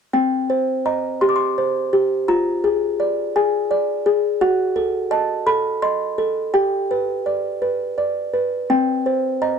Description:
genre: classical, lullaby for music box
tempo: 56 BPM (dotted quarters)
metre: 6/8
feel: straight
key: C minor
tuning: A4 = 440 Hz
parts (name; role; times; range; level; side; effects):
- music box; solo; 0.1-9.6 s; C4 to D6; -18 LUFS; equal; none
room: light reverb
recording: dry, close 1970s-style studio recording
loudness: -18 LUFS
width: side -6 dB against mid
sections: 0.1-9.6 A section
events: none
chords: 0.1 Cm; 2.3 Ddim/F; 4.4 F#dim7; 6.5 G; 8.7 Cm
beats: | 0.13 1.20 | 2.27 3.34 | 4.40 5.47 | 6.54 7.62 | 8.70

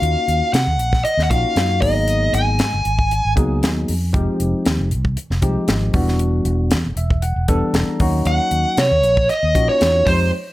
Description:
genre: electric jazz fusion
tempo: 117 BPM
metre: 4/4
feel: straight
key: unclear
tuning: A4 = 441 Hz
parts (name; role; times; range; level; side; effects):
- smooth overdriven lead guitar; melody; 0.0-3.3, 8.3-10.3 s; C5 to Ab5; -18 LUFS; equal; none
- bell-like tine electric piano; accompaniment; 0.0-10.3 s; E3 to Bb5; -22 LUFS; left 1 dB; lush chorus
- fingered electric bass; bass; 0.0-10.3 s; E1 to C3; -20 LUFS; equal; none
- tight funk drum kit; drums; 0.0-10.2 s; hi-hat, kick drum, snare drum; -21 LUFS; equal; none
room: light reverb, small room ambience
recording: none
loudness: -15 LUFS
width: side -16 dB against mid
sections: 0.0-10.5 A section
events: tine electric piano fill 6.7-8.3; band accent 10.3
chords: 0.0 Ebm9; 1.8 Abm9; 4.1 Fm9; 5.9 Em9; 8.0 Ebm9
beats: | 0.03 0.54 1.05 1.57 | 2.08 2.60 3.11 3.63 | 4.14 4.66 5.17 5.69 | 6.20 6.72 7.23 7.75 | 8.26 8.78 9.29 9.80 | 10.32

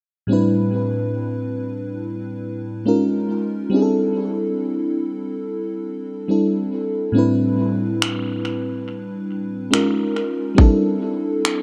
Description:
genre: contemporary R&B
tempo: 70 BPM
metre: 4/4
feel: straight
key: unclear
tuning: A4 = 440 Hz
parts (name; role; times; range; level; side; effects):
- FM electric piano with soft pad layer; accompaniment; 0.3-11.6 s; A2 to B4; -22 LUFS; equal; chorus, tape echo
- trap drum kit; drums; 8.0-11.6 s; finger snaps, kick drum; -19 LUFS; equal; vintage 12-bit sampler grit, tape echo
room: moderate spring reverb, RT60 2.6 s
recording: echo-heavy mix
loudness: -21 LUFS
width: mono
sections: 0.3-11.6 A section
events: none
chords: 0.3 Am11; 2.9 Db6; 3.7 C6; 7.2 Am11; 9.7 Db6; 10.6 C6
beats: | 0.30 1.15 2.01 2.87 | 3.73 4.58 5.44 6.30 | 7.15 8.01 8.87 9.72 | 10.58 11.44

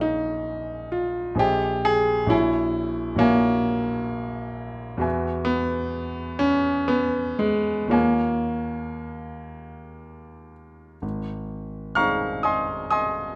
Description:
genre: classical, impressionist solo piano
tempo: 57-68 BPM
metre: 3/4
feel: rubato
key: unclear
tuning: A4 = 443 Hz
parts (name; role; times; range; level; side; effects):
- warm concert grand piano; solo; 0.0-13.4 s; Ab1 to F6; -25 LUFS; equal; none
room: moderate recital hall reverb, RT60 1.7 s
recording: close, detailed microphones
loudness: -24 LUFS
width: mono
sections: 0.0-11.0 A section; 11.0-13.4 B section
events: none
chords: 0.0 Bbm7; 1.4 Abmaj7/Bb; 2.3 Gb9/Bb; 5.0 Eadd9; 7.9 Eb9sus4; 11.0 Bbm11/Ab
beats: 0.48 1.40 | 2.33 3.23 4.13 | 5.05 5.98 6.92 | 7.95 8.98 10.02 | 11.03 11.99 12.94

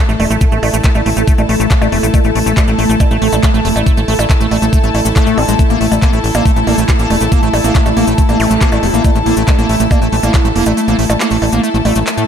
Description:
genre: psychedelic trance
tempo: 139 BPM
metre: 4/4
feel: straight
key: unclear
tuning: A4 = 440 Hz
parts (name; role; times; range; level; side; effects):
- evolving wavetable pad; sustained chords; 0.1-12.3 s; A3 to A4; -18 LUFS; right 1 dB; ensemble chorus, built-in reverb, phaser, sidechain pumping
- liquid acid bass; riff; 0.0-12.2 s; G#3 to C#4; -18 LUFS; moving between left 8 dB and right 6 dB; chorus, auto-pan, sidechain pumping, analog delay
- rich studio string section; texture; 0.0-12.3 s; E4 to A5; -20 LUFS; left 1 dB; sidechain pumping
- tight sequencer bass; bass; 0.1-12.2 s; E1 to A2; -16 LUFS; equal; none
- techno drum kit; drums; 0.1-12.3 s; handclaps, hi-hat, percussion blips; -21 LUFS; right 2 dB; none
- cabasa; percussion; 0.1-12.3 s; none; -28 LUFS; left 6 dB; none
- formant-sweep wobble bass; second line; 0.2-0.7, 6.7-8.9 s; A3; -27 LUFS; right 5 dB; none
- electronic kick drum; drums; 0.4-10.4 s; none; -11 LUFS; equal; none
- zap; sound effects; 8.4-8.5 s; none; -25 LUFS; left 1 dB; none
room: moderate lush hall reverb, RT60 1.9 s, digital ambience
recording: dreamy mix soaked in reverb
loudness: -10 LUFS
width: side -8 dB against mid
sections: 0.0-12.3 A section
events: kick drops out 10.8-12.3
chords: 0.0 A5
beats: | 0.41 0.84 1.28 1.71 | 2.14 2.57 3.00 3.43 | 3.87 4.30 4.73 5.16 | 5.59 6.02 6.46 6.89 | 7.32 7.75 8.18 8.61 | 9.05 9.48 9.91 10.34 | 10.77 11.20 11.63 12.07

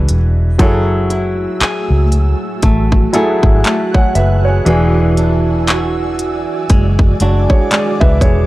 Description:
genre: contemporary R&B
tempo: 59 BPM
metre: 4/4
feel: swing 58% on 16ths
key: F# minor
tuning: A4 = 440 Hz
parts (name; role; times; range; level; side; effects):
- warm grand piano; accompaniment; 0.0-8.5 s; E3 to F#5; -17 LUFS; equal; none
- flamenco guitar; arpeggios; 0.0-8.5 s; E3 to G#4; -19 LUFS; equal; none
- vintage muted fingered electric bass; bass; 0.0-8.5 s; E1 to C#2; -14 LUFS; equal; none
- trap drum kit; drums; 0.1-8.5 s; handclaps, hi-hat, kick drum; -13 LUFS; equal; none
- ethereal airy pad; sustained chords; 1.3-8.5 s; A3 to F#6; -23 LUFS; right 3 dB; ensemble chorus, built-in reverb, tremolo
room: little or no reverb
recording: dry, gritty hardware recording, transformer saturation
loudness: -11 LUFS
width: side -17 dB against mid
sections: 0.0-8.5 A section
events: none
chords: 0.0 E9; 0.6 F#m9; 4.7 E9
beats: | 0.59 1.61 2.63 3.64 | 4.66 5.68 6.70 7.71

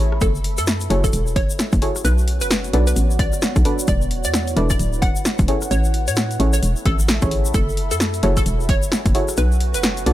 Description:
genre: UK garage, two-step garage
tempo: 131 BPM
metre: 4/4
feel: swing 60% on 16ths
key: F# minor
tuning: A4 = 438 Hz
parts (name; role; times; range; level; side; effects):
- deep mellow chord stab; stabs; 0.0-10.1 s; C#4 to D5; -25 LUFS; equal; chorus, digital delay
- hollow knocking FM bass; bass; 0.0-10.1 s; D1 to A2; -19 LUFS; equal; sidechain pumping
- deep dark ambient pad; texture; 0.0-10.1 s; B3 to B5; -30 LUFS; right 1 dB; chorus, built-in reverb, sidechain pumping
- punchy analog drum machine; drums; 0.1-10.1 s; hi-hat, rim click, snare drum; -23 LUFS; equal; overdrive
- hollow square pluck; melody; 0.2-10.0 s; A4 to F#5; -27 LUFS; equal; analog chorus, digital delay
- electronic kick drum; drums; 0.2-9.1 s; none; -20 LUFS; equal; overdrive
- egg shaker; percussion; 0.2-10.0 s; none; -30 LUFS; left 4 dB; none
room: digital ambience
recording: none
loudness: -16 LUFS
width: side -14 dB against mid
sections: 0.0-10.1 A section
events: break 0.0; drum fill 0.0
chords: 0.0 F#m9; 2.0 Bm7; 3.9 E7sus4; 5.5 F#m9; 9.4 Bm7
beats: | 0.22 0.67 1.13 1.59 | 2.05 2.51 2.96 3.42 | 3.88 4.34 4.80 5.25 | 5.71 6.17 6.63 7.09 | 7.54 8.00 8.46 8.92 | 9.38 9.83

